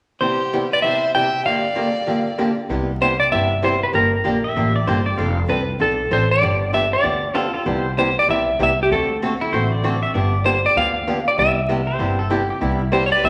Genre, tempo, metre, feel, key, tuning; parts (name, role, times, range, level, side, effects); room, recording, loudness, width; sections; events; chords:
country, western swing; 194 BPM; 4/4; swing 62% on 8ths; C major; A4 = 437 Hz
clean lap steel guitar; melody; 0.2-13.3 s; G4 to G5; -21 LUFS; equal
clear fiddle; second line; 0.2-2.5, 13.0-13.3 s; G4 to E5; -29 LUFS; equal
archtop guitar, miked and amplified; accompaniment; 0.2-13.3 s; G2 to A4; -25 LUFS; equal
upright bass; bass; 2.7-13.3 s; F1 to D2; -26 LUFS; equal
pedal steel guitar; second line; 4.4-12.8 s; E4 to F5; -28 LUFS; equal
wet large studio reverb, RT60 1.2 s; vinyl crackle; -19 LUFS; mono
0.2-2.7 A section; 2.7-13.3 B section
0.2 Cmaj7; 1.5 Gm7; 2.7 Cmaj7; 3.9 Gm7; 5.2 F6; 6.4 G7; 7.7 Cmaj7; 8.9 D7; 10.1 G7; 11.4 Cmaj7